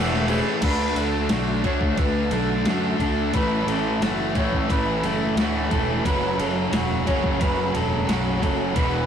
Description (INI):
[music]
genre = rock, shoegaze and dream pop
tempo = 88 BPM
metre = 4/4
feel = straight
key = unclear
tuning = A4 = 439 Hz
[part]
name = electric guitar through a small old amp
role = arpeggios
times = 0.0-9.1 s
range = F#4 to C#5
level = -28 LUFS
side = right 1 dB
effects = none
[part]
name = biting overdriven guitar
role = riff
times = 0.0-9.1 s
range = E2 to D4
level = -26 LUFS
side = equal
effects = none
[part]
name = overdriven semi-hollow guitar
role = riff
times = 0.0-9.1 s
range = A2 to F#4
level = -30 LUFS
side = right 6 dB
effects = none
[part]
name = thick fuzz guitar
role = riff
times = 0.0-9.1 s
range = E2 to D4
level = -28 LUFS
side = left 5 dB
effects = distortion
[part]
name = fuzz fingered electric bass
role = bass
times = 0.0-9.1 s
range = E1 to F#2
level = -27 LUFS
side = equal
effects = overdrive
[part]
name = crisp 8-bit digital drum machine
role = drums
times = 0.3-8.9 s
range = crash cymbal, kick drum, ride cymbal, snare drum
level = -27 LUFS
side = equal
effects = none
[part]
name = tambourine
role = percussion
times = 0.3-0.5 s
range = none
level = barely audible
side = none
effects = none
[sound]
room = wet small room ambience, RT60 0.5 s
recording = rough rehearsal-room recording, warm saturation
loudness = -20 LUFS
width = side -8 dB against mid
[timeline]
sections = 0.6-9.1 A section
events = none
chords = 0.0 A; 0.6 D; 3.3 A6; 6.0 F#m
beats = | 0.63 1.31 1.98 2.66 | 3.34 4.01 4.69 5.37 | 6.05 6.73 7.41 8.08 | 8.76